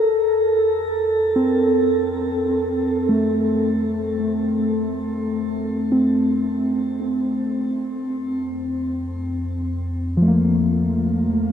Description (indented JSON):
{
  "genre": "ambient",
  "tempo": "free time",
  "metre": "none",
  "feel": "none",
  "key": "F major",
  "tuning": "A4 = 437 Hz",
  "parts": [
    { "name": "muted felt-like synth keys", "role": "arpeggios", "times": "0.0-11.5 s", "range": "F3 to A4", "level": "-18 LUFS", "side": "equal", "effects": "chorus, diffuse ambient delay, shimmer reverb" },
    { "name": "deep rumbling drone", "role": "bass", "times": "0.1-11.5 s", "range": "F2", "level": "-31 LUFS", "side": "equal", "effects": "built-in reverb" }
  ],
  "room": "wet huge ambient reverb, RT60 7.5 s",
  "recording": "in a vast, echoing space",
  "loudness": "-18 LUFS",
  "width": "side -8 dB against mid",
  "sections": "0.0-11.5 A section",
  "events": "fade-in on synth drone 0.0-11.5",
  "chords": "0.0 Fadd11",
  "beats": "free time"
}